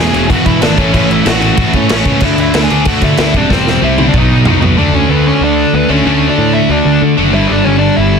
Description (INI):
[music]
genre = punk rock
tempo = 187 BPM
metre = 4/4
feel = straight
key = unclear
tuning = A4 = 440 Hz
[part]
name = dark smooth lead guitar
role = melody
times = 0.0-8.2 s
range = B3 to G#5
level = -16 LUFS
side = left 1 dB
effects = overdrive
[part]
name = distorted electric guitar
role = riff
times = 0.0-8.2 s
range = E2 to D4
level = -12 LUFS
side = equal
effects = distortion
[part]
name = fuzz picked electric bass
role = bass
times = 0.0-8.2 s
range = E1 to D3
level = -15 LUFS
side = equal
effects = overdrive
[part]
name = raw garage drum kit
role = drums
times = 0.1-4.7 s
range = crash cymbal, kick drum, snare drum, toms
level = -14 LUFS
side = right 1 dB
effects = none
[sound]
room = light reverb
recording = dense, heavily limited modern master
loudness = -8 LUFS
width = side -6 dB against mid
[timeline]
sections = 0.0-4.8 A section; 4.8-8.2 B section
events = drum fill 3.5-4.8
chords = 0.0 E; 0.8 A; 2.2 D; 3.3 C/E; 4.1 B; 4.8 D5; 7.3 G5